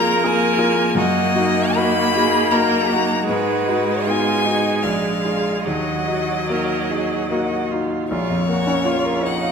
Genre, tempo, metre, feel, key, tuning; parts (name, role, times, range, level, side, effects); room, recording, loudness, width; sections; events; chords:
classical, slow romantic movement for piano quartet; 71-83 BPM; 3/4; rubato; Eb minor; A4 = 440 Hz
clear violin; melody; 0.0-9.5 s; Cb5 to Cb6; -22 LUFS; left 6 dB
clear cello; second line; 0.0-9.5 s; D4 to Bb4; -25 LUFS; right 7 dB
clear grand piano; accompaniment; 0.0-9.5 s; Bb1 to F5; -20 LUFS; left 1 dB
rich viola; accompaniment; 0.0-9.4 s; Gb3 to Bb3; -24 LUFS; right 4 dB
moderate concert hall reverb, RT60 2.2 s; minimal, uncompressed stereo recording; -17 LUFS; side -6 dB against mid
0.0-8.1 A section; 8.1-9.5 B section
0.0 Bb7(no3)/F; 1.0 Ebm/Gb; 3.3 Abm7; 4.8 Bb7; 5.7 Ebm; 8.1 Bbm